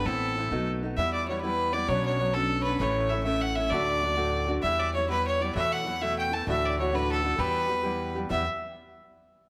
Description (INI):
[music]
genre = celtic folk, Celtic jig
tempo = 131 BPM (dotted quarters)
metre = 6/8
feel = straight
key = E dorian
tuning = A4 = 440 Hz
[part]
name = clear fiddle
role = melody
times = 0.0-8.5 s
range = A4 to A5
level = -30 LUFS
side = equal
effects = none
[part]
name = fingerpicked steel-string acoustic guitar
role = accompaniment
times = 0.0-8.4 s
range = D2 to G4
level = -33 LUFS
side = equal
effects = none
[part]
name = upright bass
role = bass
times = 0.0-8.5 s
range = A1 to E2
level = -36 LUFS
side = equal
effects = none
[sound]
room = moderate recital hall reverb, RT60 1.8 s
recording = none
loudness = -27 LUFS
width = mono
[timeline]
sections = 1.0-8.3 A section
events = none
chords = 0.1 Amadd9; 0.5 B7; 1.0 Em; 1.9 Bmadd9; 2.8 A; 3.7 D; 4.6 Em; 5.5 Asus2/E; 6.5 Dadd9; 7.4 Em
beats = | 0.05 0.51 | 0.97 1.43 | 1.89 2.34 | 2.80 3.26 | 3.72 4.18 | 4.63 5.09 | 5.55 6.01 | 6.47 6.92 | 7.38 7.84 | 8.30